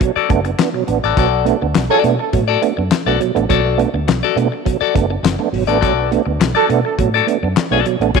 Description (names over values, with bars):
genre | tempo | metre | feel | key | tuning
funk | 103 BPM | 4/4 | straight | B minor | A4 = 440 Hz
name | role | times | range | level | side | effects
clean electric guitar | accompaniment | 0.0-8.2 s | F#4 to D5 | -19 LUFS | left 12 dB | phaser
tonewheel organ | stabs | 0.0-8.2 s | B2 to D4 | -18 LUFS | right 11 dB | overdrive, chorus vibrato, slow rotary speaker, tape echo
damped 70s drum kit | drums | 0.0-8.2 s | handclaps, hi-hat, kick drum, snare drum | -19 LUFS | left 4 dB | none
vintage muted fingered electric bass | bass | 0.2-8.2 s | F#1 to B2 | -20 LUFS | equal | none
warm trombone | second line | 1.9-2.0, 6.6-6.7 s | A4 | -21 LUFS | right 11 dB | tape echo
room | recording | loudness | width
moderate echo chamber reverb, RT60 2.3 s | 1960s-style stereo with parts hard left and right | -13 LUFS | side -5 dB against mid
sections
0.0-8.2 A section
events
none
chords
0.0 Bm7